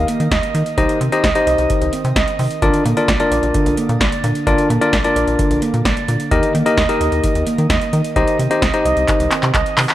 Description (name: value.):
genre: synth-pop.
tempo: 130 BPM.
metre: 4/4.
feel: straight.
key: Bb major.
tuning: A4 = 440 Hz.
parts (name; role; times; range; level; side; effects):
tine electric piano; accompaniment; 0.0-9.3 s; D4 to Eb5; -18 LUFS; left 2 dB; shimmer reverb.
rubbery square bass; bass; 0.0-9.9 s; Bb1 to Eb3; -19 LUFS; equal; none.
handpan; arpeggios; 0.1-9.9 s; D3 to Eb5; -20 LUFS; right 4 dB; tape echo, shimmer reverb.
electro analog drum machine; drums; 0.1-9.9 s; handclaps, hi-hat, kick drum, snare drum; -19 LUFS; equal; overdrive.
room: light reverb, digital ambience.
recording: dry, gritty hardware recording.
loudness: -14 LUFS.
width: side -14 dB against mid.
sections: 0.0-9.9 A section.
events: drum fill 9.1-9.9.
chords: 0.0 Eb5; 0.8 Cm; 2.6 Bb; 6.3 Eb; 8.2 Cm.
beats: 0.32 | 0.78 1.24 1.70 2.16 | 2.62 3.08 3.55 4.01 | 4.47 4.93 5.39 5.85 | 6.32 6.78 7.24 7.70 | 8.16 8.62 9.08 9.55.